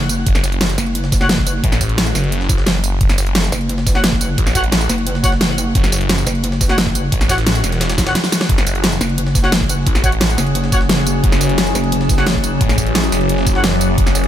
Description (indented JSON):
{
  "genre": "dark technical drum and bass",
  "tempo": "175 BPM",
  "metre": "4/4",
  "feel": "straight",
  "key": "F# minor",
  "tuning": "A4 = 440 Hz",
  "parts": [
    { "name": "pulsing pluck wobble bass", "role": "bass", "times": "0.0-12.6 s", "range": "F#1", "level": "-18 LUFS", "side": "equal", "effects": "chorus" },
    { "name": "jungle sampler-style drum kit", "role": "drums", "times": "0.0-14.2 s", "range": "hi-hat, snare drum", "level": "-28 LUFS", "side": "equal", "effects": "none" },
    { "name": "dubstep drum kit", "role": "drums", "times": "0.1-14.3 s", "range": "hi-hat, snare drum, tambourine", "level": "-19 LUFS", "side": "equal", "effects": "overdrive" },
    { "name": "phased detuned saw bass", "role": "bass", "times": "0.3-14.3 s", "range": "E1 to A1", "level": "-18 LUFS", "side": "equal", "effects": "phaser, tube saturation" },
    { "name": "electronic kick drum", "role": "drums", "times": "0.3-14.0 s", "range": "none", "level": "-17 LUFS", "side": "equal", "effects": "overdrive" },
    { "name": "warm brass ensemble", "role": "stabs", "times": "1.2-1.3, 4.0-13.6 s", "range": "F#4 to F#5", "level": "-25 LUFS", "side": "left 1 dB", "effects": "ping-pong delay" },
    { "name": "metallic inharmonic drone", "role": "sustained chords", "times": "9.7-14.3 s", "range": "F#3 to G#4", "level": "-21 LUFS", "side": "left 2 dB", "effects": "chorus, built-in reverb, sidechain pumping" }
  ],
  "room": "light reverb",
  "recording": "none",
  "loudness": "-13 LUFS",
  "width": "side -11 dB against mid",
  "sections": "0.0-14.3 A section",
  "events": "drum fill 8.0-8.5",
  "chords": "0.0 F#madd9"
}